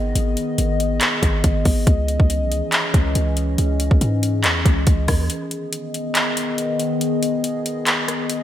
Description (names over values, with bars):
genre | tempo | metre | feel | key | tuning
hip hop, trap | 140 BPM | 4/4 | half-time | G# minor | A4 = 440 Hz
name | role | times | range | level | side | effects
dark analog pad | sustained chords | 0.0-8.4 s | D#3 to D#5 | -23 LUFS | left 2 dB | chorus, phaser
warm 808-style bass | bass | 0.0-5.3 s | G#1 to G#2 | -20 LUFS | equal | none
trap drum kit | drums | 0.2-8.4 s | handclaps, hi-hat, kick drum, rim click | -19 LUFS | equal | gated reverb
room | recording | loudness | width
moderate lush hall reverb, RT60 1.9 s, digital ambience | bright 1980s-style digital production | -17 LUFS | side -11 dB against mid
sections
0.0-8.4 A section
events
break 5.3-8.4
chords
0.0 G#m; 1.9 C#madd9; 5.3 G#m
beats
| 0.15 0.58 1.01 1.44 | 1.87 2.30 2.73 3.15 | 3.58 4.01 4.44 4.87 | 5.30 5.73 6.16 6.58 | 7.01 7.44 7.87 8.30